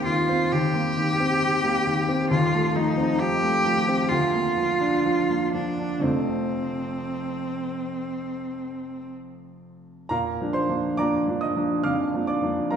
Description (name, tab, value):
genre	classical, romantic duo for cello and grand piano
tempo	58-70 BPM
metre	4/4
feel	rubato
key	Bb major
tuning	A4 = 441 Hz
part	rich cello	melody	0.0-9.1 s	C4 to G4	-24 LUFS	equal	none
part	clear baby grand piano	accompaniment	0.0-12.8 s	Eb1 to F6	-24 LUFS	equal	none
room	wet recital hall reverb, RT60 1.7 s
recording	heard from further back in the room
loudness	-22 LUFS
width	side -7 dB against mid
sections	0.0-10.1 A section; 10.1-12.8 B section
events	none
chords	0.0 Cm7/Eb; 2.3 F7/Eb; 4.1 Bb/D; 6.1 F; 10.1 Bb